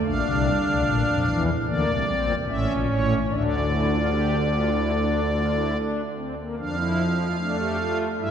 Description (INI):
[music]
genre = classical, baroque-style 3-part fugue for pipe organ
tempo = 74 BPM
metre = 4/4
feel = straight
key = D minor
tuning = A4 = 440 Hz
[part]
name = pipe organ, strings celeste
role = solo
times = 0.0-8.3 s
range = A1 to F5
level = -21 LUFS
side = equal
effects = none
[sound]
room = wet church reverb, RT60 3.1 s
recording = heard from further back in the room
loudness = -21 LUFS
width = side -8 dB against mid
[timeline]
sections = 0.0-6.6 A section; 6.6-8.3 B section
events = none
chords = 0.0 Bb; 1.6 Bbadd9; 2.5 A; 3.3 Dm; 6.6 Dm/F